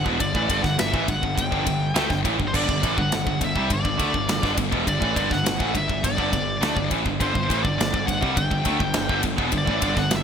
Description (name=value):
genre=heavy metal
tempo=103 BPM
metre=4/4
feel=straight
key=unclear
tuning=A4 = 440 Hz
part: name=high-gain lead guitar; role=melody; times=0.0-10.2 s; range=C5 to G5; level=-27 LUFS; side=left 1 dB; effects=distortion, ping-pong delay
part: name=heavy high-gain guitar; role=riff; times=0.0-10.2 s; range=E2 to A3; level=-27 LUFS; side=left 11 dB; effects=distortion
part: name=heavy high-gain guitar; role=riff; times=0.0-10.2 s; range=E2 to A3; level=-27 LUFS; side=right 12 dB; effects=distortion
part: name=fuzz picked electric bass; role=bass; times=0.0-10.2 s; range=E1 to D2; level=-28 LUFS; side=equal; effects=overdrive
part: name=tight metal drum kit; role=drums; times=0.1-10.2 s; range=crash cymbal, kick drum, ride cymbal, snare drum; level=-26 LUFS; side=equal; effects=gated reverb
room=light reverb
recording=bright 1980s-style digital production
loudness=-20 LUFS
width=side -7 dB against mid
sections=0.0-10.2 A section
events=none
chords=0.0 G5